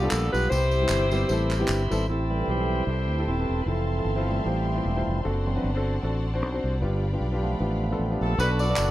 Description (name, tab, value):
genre	uptempo gospel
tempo	152 BPM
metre	4/4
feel	swing 56% on 8ths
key	unclear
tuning	A4 = 440 Hz
part	clear saxophone section	melody	0.0-1.7, 8.2-8.9 s	B3 to D5	-27 LUFS	equal	slapback echo
part	clear concert grand piano	accompaniment	0.0-8.9 s	G2 to A5	-30 LUFS	left 1 dB	none
part	bright tonewheel organ	sustained chords	0.0-8.9 s	E3 to D6	-30 LUFS	right 2 dB	stopped rotary speaker
part	fingered electric bass	bass	0.0-8.9 s	Eb1 to D2	-26 LUFS	equal	none
part	handclaps and tambourine	percussion	0.1-2.0, 8.4-8.9 s	none	-33 LUFS	equal	none
part	clear studio string section	sustained chords	2.1-8.4 s	D5 to C6	-40 LUFS	left 3 dB	none
room	light reverb, small room ambience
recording	dark, warm production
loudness	-23 LUFS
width	side -14 dB against mid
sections	0.0-2.1 A section; 2.1-8.4 B section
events	tonewheel organ solo 2.1-8.4; grand piano fill 7.6-8.4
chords	0.0 G7; 0.5 Cmaj7; 2.1 Am7; 3.7 Fmaj7; 5.2 D7/F#; 6.8 G7; 8.4 Bm7